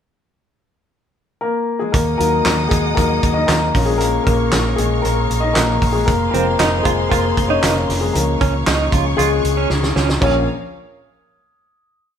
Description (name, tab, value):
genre	piano-driven pop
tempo	116 BPM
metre	4/4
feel	straight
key	Bb minor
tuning	A4 = 440 Hz
part	warm upright piano	accompaniment	1.4-10.5 s	Bb1 to Eb5	-18 LUFS	left 3 dB	none
part	warm studio string section	sustained chords	1.9-10.5 s	Bb3 to Eb6	-26 LUFS	equal	none
part	vintage muted fingered electric bass	bass	1.9-10.5 s	F1 to Eb2	-21 LUFS	right 1 dB	none
part	loose indie drum kit	drums	1.9-10.3 s	crash cymbal, handclaps, hi-hat, kick drum, snare drum, toms	-20 LUFS	right 1 dB	none
part	direct-recorded clean electric guitar	riff	6.3-10.5 s	C4 to F4	-22 LUFS	right 7 dB	tremolo
room	moderate stone room reverb, RT60 1.2 s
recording	band playing live in one room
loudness	-14 LUFS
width	side -8 dB against mid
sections	0.0-1.9 pickup bar; 1.9-10.2 pre-chorus; 10.2-12.2 final chord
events	upright piano solo 1.9-10.2; drum fill 9.7-10.2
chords	0.0 Absus2; 1.9 Ebm; 3.8 Bbm; 6.1 Fm; 8.1 Db; 10.2 Bbm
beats	0.39 0.91 1.42 | 1.94 2.46 2.98 3.49 | 4.01 4.53 5.04 5.56 | 6.08 6.59 7.11 7.63 | 8.15 8.66 9.18 9.70 | 10.21